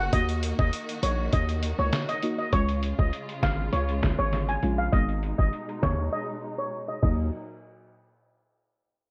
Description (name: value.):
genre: dancehall.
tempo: 100 BPM.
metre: 4/4.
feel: straight.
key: Eb minor.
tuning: A4 = 440 Hz.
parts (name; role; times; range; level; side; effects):
steel pan; melody; 0.0-7.3 s; Db5 to Ab5; -33 LUFS; equal; none.
deep mellow chord stab; accompaniment; 0.0-7.3 s; Gb3 to Gb4; -34 LUFS; equal; chorus, phaser, sidechain pumping.
warm studio string section; sustained chords; 0.0-7.3 s; Bb2 to Gb4; -40 LUFS; equal; sidechain pumping.
hard-hitting 808-style bass; bass; 0.0-7.3 s; Ab1 to Eb2; -30 LUFS; equal; none.
trip hop sampler-style drum kit; drums; 0.1-7.2 s; crash cymbal, hi-hat, kick drum, snare drum; -30 LUFS; equal; none.
room: little or no reverb.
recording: low-pass filter, nothing above 10.8 kHz.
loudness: -27 LUFS.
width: mono.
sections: 0.0-7.3 A section; 7.3-9.1 B section.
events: filter sweep 0.0-7.3; break 6.1-7.3.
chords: 0.1 Ebm; 2.5 Db; 4.9 Abm; 7.0 Ebm; 7.3 N.C..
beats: | 0.13 0.73 1.33 1.93 | 2.53 3.13 3.73 4.33 | 4.93 5.53 6.13 6.73.